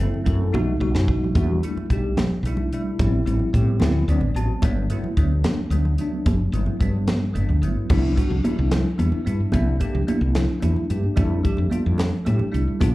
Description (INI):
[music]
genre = electric jazz fusion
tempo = 73 BPM (dotted quarters)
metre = 6/8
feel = straight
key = unclear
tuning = A4 = 442 Hz
[part]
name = bell-like tine electric piano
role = accompaniment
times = 0.0-12.9 s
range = F#3 to A5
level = -26 LUFS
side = equal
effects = fast stereo tremolo, phaser, slapback echo
[part]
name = woody fretless electric bass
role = bass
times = 0.0-12.9 s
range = F#1 to A2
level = -21 LUFS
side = equal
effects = none
[part]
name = congas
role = percussion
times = 0.0-12.9 s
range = none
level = -26 LUFS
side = right 1 dB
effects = none
[part]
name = tight funk drum kit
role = drums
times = 0.3-12.9 s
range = crash cymbal, hi-hat, kick drum, snare drum, toms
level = -24 LUFS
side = equal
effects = none
[sound]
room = light reverb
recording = live gig heard through the venue's PA, club reverb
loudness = -19 LUFS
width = side -18 dB against mid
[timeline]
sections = 0.0-7.9 A section; 7.9-12.9 B section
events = drum fill 0.5-1.4; tine electric piano fill 3.8-4.6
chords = 0.0 F#m7b5; 0.5 B7b13; 1.4 Em11; 3.0 Am7; 3.8 D13; 4.6 Gmaj9; 7.9 Cmaj7; 9.5 C13; 11.2 Fmaj13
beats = 0.54 | 1.36 2.18 | 3.00 3.81 | 4.63 5.45 | 6.27 7.08 | 7.90 8.72 | 9.54 10.35 | 11.17 11.98 | 12.80